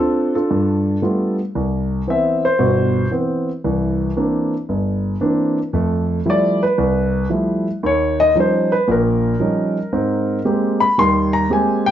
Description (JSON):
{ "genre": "solo jazz", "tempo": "114 BPM", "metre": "4/4", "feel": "swing 66% on 8ths", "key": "unclear", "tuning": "A4 = 440 Hz", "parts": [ { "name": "warm grand piano", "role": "solo", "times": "0.0-11.9 s", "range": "G1 to C6", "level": "-16 LUFS", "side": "equal", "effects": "none" } ], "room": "moderate club reverb, RT60 0.5 s", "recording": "nothing above 7.5 kHz", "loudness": "-16 LUFS", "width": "side -10 dB against mid", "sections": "0.0-1.5 A section; 1.5-11.9 B section", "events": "grand piano solo 1.5-11.9", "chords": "0.5 G9; 1.5 Cmaj7; 3.6 C9; 5.7 Fmaj9; 7.8 Eb9; 9.9 Abmaj9" }